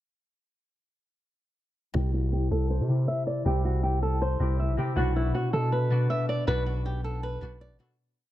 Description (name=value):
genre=hip hop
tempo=159 BPM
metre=4/4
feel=half-time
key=B phrygian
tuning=A4 = 438 Hz
part: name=flamenco guitar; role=melody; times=1.9-7.9 s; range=E4 to E5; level=-31 LUFS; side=right 1 dB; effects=low-pass filter
part: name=concert harp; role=accompaniment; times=1.9-8.0 s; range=B2 to A4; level=-29 LUFS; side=left 2 dB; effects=low-pass filter
part: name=long sustained 808-style bass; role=bass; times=1.9-7.8 s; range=A1 to C3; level=-27 LUFS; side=equal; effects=none
room=light reverb, studio ambience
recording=none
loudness=-25 LUFS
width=side -14 dB against mid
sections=1.9-8.0 breakdown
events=filter sweep 1.9-8.0; fade-out 6.5-8.0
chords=1.9 C; 5.0 Bm